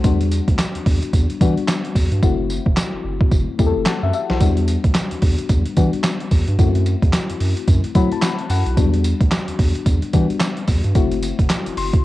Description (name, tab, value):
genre	R&B, new jack swing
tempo	110 BPM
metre	4/4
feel	swing 60% on 16ths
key	E minor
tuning	A4 = 442 Hz
part	mellow FM electric piano	accompaniment	0.0-12.0 s	F#3 to C6	-23 LUFS	left 7 dB	chorus, cassette tape
part	round analog bass	bass	0.0-11.9 s	E1 to F#3	-20 LUFS	right 1 dB	none
part	boom bap sampler-style drum kit	drums	0.0-12.0 s	handclaps, hi-hat, kick drum, snare drum, tambourine	-18 LUFS	right 1 dB	overdrive
room	little or no reverb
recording	home recording on cassette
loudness	-16 LUFS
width	side -16 dB against mid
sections	0.0-12.0 A section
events	hi-hats muted 2.2-4.4; FM electric piano fill 3.6-4.4, 7.7-8.8, 11.5-12.0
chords	0.0 Em7; 2.2 F#m7b5; 4.4 Em7; 6.6 F#m7b5; 8.8 Em7; 11.0 F#m7b5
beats	| 0.04 0.59 1.13 1.68 | 2.23 2.77 3.32 3.86 | 4.41 4.95 5.50 6.04 | 6.59 7.13 7.68 8.22 | 8.77 9.32 9.86 10.41 | 10.95 11.50 12.04